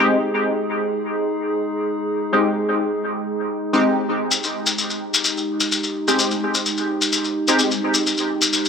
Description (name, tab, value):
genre	dub techno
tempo	128 BPM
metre	4/4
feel	straight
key	F minor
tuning	A4 = 441 Hz
part	warbly tape-like pad	sustained chords	0.0-8.7 s	Ab3 to Ab4	-23 LUFS	right 1 dB	chorus, built-in reverb
part	resonant sweep polysynth	stabs	0.0-7.6 s	Ab3 to G4	-21 LUFS	left 1 dB	chorus, phaser, cassette tape, dub echo
part	shekere	percussion	4.3-8.7 s	none	-19 LUFS	left 4 dB	none
room	moderate echo chamber reverb, RT60 1.8 s, small room reverb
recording	dry, gritty hardware recording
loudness	-18 LUFS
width	side -6 dB against mid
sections	0.0-8.7 A section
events	filter sweep on analog polysynth 0.0-8.7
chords	0.0 Fm7 (rootless)